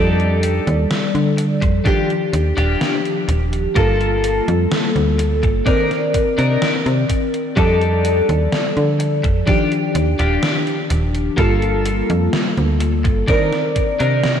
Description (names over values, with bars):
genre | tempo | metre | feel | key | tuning
vaporwave | 63 BPM | 4/4 | straight | G minor | A4 = 440 Hz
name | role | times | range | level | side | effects
FM electric piano with soft pad layer | accompaniment | 0.0-14.4 s | Eb3 to D5 | -18 LUFS | left 1 dB | phaser, lush chorus, cassette tape, diffuse ambient delay
twelve-string electric guitar | riff | 0.0-14.4 s | Bb3 to Bb4 | -25 LUFS | left 1 dB | wide subtle chorus, diffuse ambient delay
slap-like FM bass | bass | 0.0-14.4 s | Eb1 to D3 | -18 LUFS | equal | none
gated 80s digital drum machine | drums | 0.2-14.4 s | hi-hat, snare drum | -24 LUFS | equal | gated reverb, gated reverb snare, overdrive
electronic kick drum | drums | 1.6-14.0 s | none | -18 LUFS | equal | none
room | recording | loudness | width
wet lush hall reverb, RT60 2.8 s | dreamy mix soaked in reverb | -15 LUFS | side -8 dB against mid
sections
0.0-14.4 A section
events
none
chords
0.0 F13; 1.9 Ebmaj9; 3.8 Gm9; 5.7 Cm9; 7.6 F13; 9.5 Ebmaj9; 11.4 Gm9; 13.3 Cm9